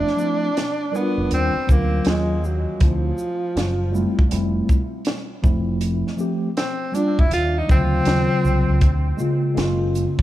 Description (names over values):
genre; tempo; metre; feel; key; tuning
hip hop, jazz-hop; 80 BPM; 4/4; swing 65% on 16ths; unclear; A4 = 441 Hz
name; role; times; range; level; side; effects
breathy tenor saxophone; melody; 0.0-9.5 s; F3 to F4; -24 LUFS; equal; analog delay
mellow tine electric piano; accompaniment; 0.0-10.2 s; C#3 to Bb4; -23 LUFS; equal; medium stereo tremolo, analog delay
deep dub fingered electric bass; bass; 0.0-10.2 s; F1 to Eb2; -22 LUFS; equal; none
compact cocktail drum kit; drums; 0.1-10.2 s; hi-hat, kick drum, shaker, snare drum; -20 LUFS; equal; none
room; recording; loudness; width
small room ambience; echo-heavy mix; -18 LUFS; side -14 dB against mid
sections
0.0-10.2 A section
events
tenor saxophone solo 0.0-10.2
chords
0.0 Dm9/F; 1.3 Ebmaj9; 2.1 Ebm9; 2.8 Dm9; 3.6 F#sus2; 4.3 Fmaj9; 5.4 Dm9/F; 7.3 Ebsus2; 8.1 Ebm9; 8.8 Dm7; 9.6 F#maj9